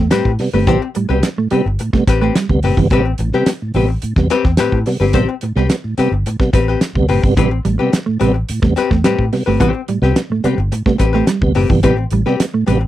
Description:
funk; 108 BPM; 4/4; straight; A minor; A4 = 438 Hz
mellow electric guitar; riff; 0.0-2.9, 7.4-12.8 s; E3 to A3; -18 LUFS; right 5 dB
vintage muted fingered electric bass; bass; 0.0-12.9 s; F#1 to A2; -17 LUFS; equal
archtop guitar, miked and amplified; accompaniment; 0.1-12.8 s; C4 to C5; -18 LUFS; left 7 dB
mellow tonewheel organ; stabs; 0.1-12.8 s; A2 to B3; -18 LUFS; right 2 dB; chorus vibrato, fast rotary speaker
damped 70s drum kit; drums; 0.1-12.8 s; hi-hat, kick drum, snare drum; -18 LUFS; equal
little or no reverb; dry, close 1970s-style studio recording; -13 LUFS; side -13 dB against mid
0.0-12.9 A section
0.0 Am9
0.12 | 0.68 1.24 1.79 2.35 | 2.91 3.47 4.03 4.59 | 5.15 5.70 6.26 6.82 | 7.38 7.93 8.49 9.05 | 9.61 10.17 10.72 11.28 | 11.84 12.40

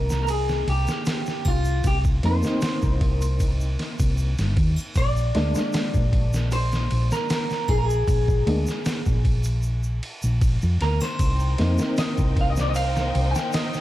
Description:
trip hop; 77 BPM; 4/4; straight; C minor; A4 = 442 Hz
electric guitar at the edge of break-up; melody; 0.0-13.8 s; F4 to Ab5; -28 LUFS; equal; lush chorus, tape echo
felt-muted upright piano; accompaniment; 0.0-13.8 s; Ab3 to Eb4; -30 LUFS; equal; tremolo
hollow-body short-scale fingered electric bass; bass; 0.0-13.3 s; G1 to F2; -22 LUFS; equal; tube saturation
trip hop sampler-style drum kit; drums; 0.1-13.8 s; kick drum, ride cymbal, snare drum; -25 LUFS; equal
egg shaker and triangle; percussion; 0.1-13.8 s; -41 LUFS; right 1 dB
rich studio violin section; sustained chords; 11.2-13.8 s; Eb4 to G5; -32 LUFS; left 1 dB
studio reverb; dark, warm production; -20 LUFS; side -15 dB against mid
0.0-13.8 A section
0.0 Cm7; 5.0 Bb7; 11.2 Cm7
0.28 1.06 | 1.84 2.62 3.40 4.18 | 4.96 5.73 6.51 7.29 | 8.07 8.85 9.63 10.41 | 11.19 11.97 12.75 13.53

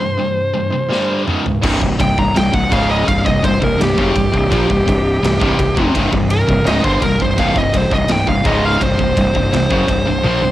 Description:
heavy metal; 84 BPM; 4/4; straight; A4 = 441 Hz
high-gain lead guitar; melody; 0.0-10.5 s; G4 to Bb5; -18 LUFS; equal; distortion, cassette tape
distorted electric guitar; riff; 0.0-10.5 s; C2 to G3; -22 LUFS; right 5 dB; distortion, cassette tape
high-gain distorted guitar; riff; 0.0-10.5 s; C2 to G3; -22 LUFS; left 5 dB; distortion, cassette tape
big rock drum kit; drums; 0.9-10.4 s; crash cymbal, kick drum, ride cymbal, snare drum, toms; -20 LUFS; equal; cassette tape
tight distorted guitar; riff; 1.6-10.5 s; C2 to F3; -22 LUFS; equal; distortion, cassette tape
fuzz fingered electric bass; bass; 1.6-10.5 s; C1 to Bb1; -18 LUFS; equal; overdrive
small room ambience; home recording on cassette; -13 LUFS; side -14 dB against mid
0.0-1.6 A section; 1.6-10.5 B section
break 0.0-1.6; drum fill 0.9-1.6, 10.2; lead electric guitar solo 1.6-10.5
0.0 C5; 0.9 G5; 1.3 Db5; 1.6 C5
0.19 0.91 | 1.63 2.35 3.07 3.79 | 4.51 5.22 5.94 6.66 | 7.38 8.09 8.81 9.53 | 10.24

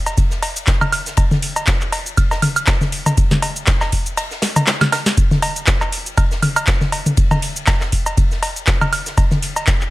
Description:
house; 120 BPM; 4/4; swing 55% on 16ths
booming analog drum machine; drums; 0.1-9.9 s; cowbell, handclaps, hi-hat, shaker, snare drum, toms, woodblock; -18 LUFS; equal
electronic kick drum; drums; 0.2-9.8 s; -16 LUFS; equal
tight funk drum kit; drums; 0.2-9.8 s; ride cymbal, snare drum; -30 LUFS; left 2 dB; sidechain pumping on cymbals, high-pass filter on cymbals, high-pass filter on snare, high-pass filter on room
little or no reverb; -15 LUFS; side -18 dB against mid
0.0-9.9 A section
kick drops out 4.2-5.2; drum fill 4.4-5.2
0.18 0.68 | 1.18 1.68 2.18 2.68 | 3.18 3.68 4.18 4.68 | 5.18 5.68 6.18 6.68 | 7.18 7.68 8.18 8.68 | 9.18 9.68

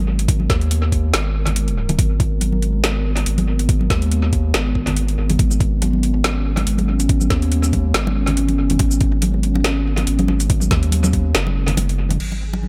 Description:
deep dubstep; 141 BPM; 4/4; swing 55% on 16ths, half-time; G# minor; A4 = 440 Hz
dark analog pad; sustained chords; 0.0-12.7 s; G#3 to A#4; -27 LUFS; equal; chorus, vintage 12-bit sampler grit
saturated sub bass; bass; 0.0-12.7 s; F#1 to D#2; -22 LUFS; equal
garage drum kit; drums; 0.2-12.3 s; crash cymbal, hi-hat, shaker, snare drum; -26 LUFS; equal; overdrive, tape echo
electronic kick drum; drums; 0.3-11.2 s; -21 LUFS; equal; overdrive
congas; percussion; 0.4-12.7 s; -27 LUFS; equal; tape echo
backwards swelling texture; texture; 12.5-12.7 s; G#3 to G#4; -45 LUFS; equal; built-in reverb
light reverb; echo-heavy mix; -18 LUFS; mono
0.0-12.2 A section
kick drops out 11.8-12.2
0.0 G#madd9
| 0.29 0.71 1.14 1.56 | 1.99 2.41 2.84 3.27 | 3.69 4.12 4.54 4.97 | 5.39 5.82 6.24 6.67 | 7.09 7.52 7.95 8.37 | 8.80 9.22 9.65 10.07 | 10.50 10.92 11.35 11.78 | 12.20 12.63

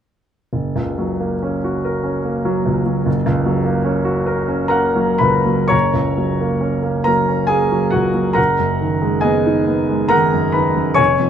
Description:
classical, romantic nocturne for solo piano; 69 BPM; 3/4; uneven beats, rubato; F# major; A4 = 443 Hz
bright grand piano; solo; 0.5-11.3 s; E#1 to C#6; -15 LUFS; equal
light reverb; close, detailed microphones; -15 LUFS; side -8 dB against mid
0.5-5.7 A section; 5.7-11.3 B section
0.5 F#; 8.4 G#m7/F#
| 0.54 1.43 2.25 | 3.07 3.87 4.74 | 5.73 6.63 7.51 | 8.37 9.24 10.12 | 10.98

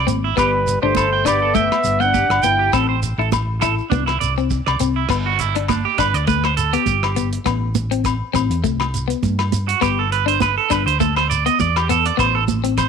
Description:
highlife guitar band; 102 BPM; 4/4; swing 54% on 16ths; G major; A4 = 440 Hz
electric guitar at the edge of break-up; arpeggios; 0.0-12.9 s; D4 to G5; -20 LUFS; right 14 dB; slapback echo
hollow-body short-scale fingered electric bass; bass; 0.0-12.9 s; G1 to G2; -22 LUFS; equal
clean electric guitar; accompaniment; 0.1-12.9 s; A3 to E4; -23 LUFS; left 16 dB; lush chorus
cloth-damped thuddy drum kit; drums; 0.1-12.9 s; crash cymbal, hi-hat, kick drum, rim click; -28 LUFS; right 3 dB
congas; percussion; 0.1-12.9 s; -24 LUFS; right 12 dB
shekere; percussion; 0.1-12.9 s; -29 LUFS; right 6 dB
mellow trumpet; melody; 0.4-2.7 s; B4 to G5; -18 LUFS; right 2 dB
breathy trombone; second line; 0.4-2.7 s; G3 to E4; -27 LUFS; left 15 dB
agogo bells; percussion; 0.4-12.9 s; -25 LUFS; left 11 dB
small room ambience; 1960s-style stereo with parts hard left and right; -16 LUFS; side -6 dB against mid
0.0-5.1 A section; 5.1-12.9 B section
clean electric guitar solo 5.1-12.9
0.4 Gadd9; 2.7 Am; 3.9 Cadd9; 5.1 Gadd9; 7.5 Amadd9; 8.6 C5; 9.8 Gadd9; 12.2 Amadd9
| 0.37 0.96 1.55 2.14 | 2.73 3.32 3.91 4.50 | 5.09 5.68 6.27 6.86 | 7.46 8.05 8.64 9.23 | 9.82 10.41 11.00 11.59 | 12.19 12.78

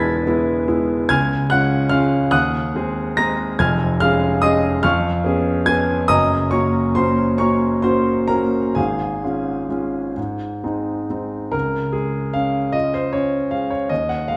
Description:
classical, romantic character piece for solo piano; 43-52 BPM (dotted quarters); 6/8; rubato; Db major; A4 = 439 Hz
clear grand piano; solo; 0.0-14.4 s; E1 to B6; -19 LUFS; equal
wet recital hall reverb, RT60 1.4 s; heard from further back in the room; -19 LUFS; mono
0.0-11.5 A section; 11.5-14.4 B section
0.0 E; 1.1 Db; 2.3 Ab7/Eb; 3.6 Db/F; 4.8 Db7/F; 6.1 Gb; 8.8 Db/Ab; 10.2 Ab; 11.5 Db
| 1.10 2.32 | 3.59 4.84 | 6.10 7.41 | 8.77 10.17 | 11.54 12.74 | 13.90

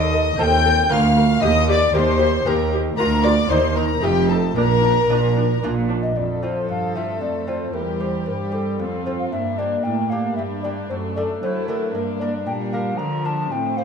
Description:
classical, baroque-style concerto movement with solo episodes; 114 BPM; 3/4; straight; Bb major, F major from 6.2 s; A4 = 445 Hz
mellow hollow tenor recorder; melody; 0.0-13.8 s; G4 to Bb5; -24 LUFS; left 4 dB
rich chamber violin section; melody; 0.0-13.8 s; G4 to G6; -29 LUFS; left 6 dB
warm chamber violin section; second line; 0.0-13.8 s; C4 to G5; -26 LUFS; left 4 dB
lute; accompaniment; 0.0-13.8 s; D2 to C5; -30 LUFS; equal
rich chamber cello section; bass; 0.0-13.8 s; D2 to F#3; -24 LUFS; right 4 dB
rich chamber double bass section; bass; 0.0-6.1 s; F1 to Eb2; -23 LUFS; right 3 dB
dark chamber viola section; accompaniment; 0.1-13.8 s; F3 to Bb4; -27 LUFS; equal
wet recital hall reverb, RT60 1.6 s; dark, warm production; -18 LUFS; side -6 dB against mid
0.0-6.2 A section; 6.2-13.8 B section
0.0 F7/Eb; 0.9 Bb/D; 1.4 Eb; 3.0 Bb/D; 3.5 Cm7/Eb; 4.0 F7; 4.6 Bb; 6.2 F; 7.7 C7/E; 8.8 F; 9.3 Gm; 10.9 D/F#; 11.9 Gm; 12.5 Bb
0.38 0.90 | 1.42 1.94 2.46 | 2.98 3.50 4.03 | 4.57 5.10 5.64 | 6.17 6.70 7.22 | 7.75 8.27 8.80 | 9.33 9.85 10.38 | 10.90 11.43 11.95 | 12.47 12.99 13.52

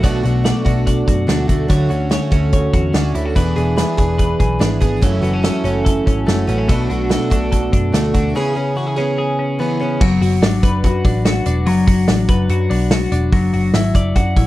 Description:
jangly indie pop; 144 BPM; 4/4; straight; A4 = 440 Hz
picked plugged-in twelve-string acoustic guitar; accompaniment; 0.0-10.0 s; F#2 to G#4; -21 LUFS; right 5 dB
twelve-string electric guitar; arpeggios; 0.0-14.5 s; F#2 to D5; -19 LUFS; left 2 dB; slapback echo
vintage muted picked electric bass; bass; 0.0-14.5 s; E1 to F#2; -19 LUFS; equal
loose indie drum kit; drums; 0.0-14.5 s; crash cymbal, hi-hat, kick drum, snare drum; -17 LUFS; equal
little or no reverb; -14 LUFS; side -16 dB against mid
0.0-10.0 A section; 10.0-14.5 B section
break 8.3-10.0
0.0 Bm7; 1.7 Dmaj7; 3.4 E7; 5.0 F#m7; 6.7 Bm7; 8.3 C#m7; 10.0 Bm7
| 0.04 0.45 0.87 1.28 | 1.70 2.11 2.53 2.94 | 3.36 3.78 4.19 4.61 | 5.02 5.44 5.86 6.27 | 6.69 7.10 7.52 7.93 | 8.35 8.77 9.18 9.60 | 10.01 10.43 10.84 11.25 | 11.67 12.08 12.50 12.91 | 13.33 13.74 14.15

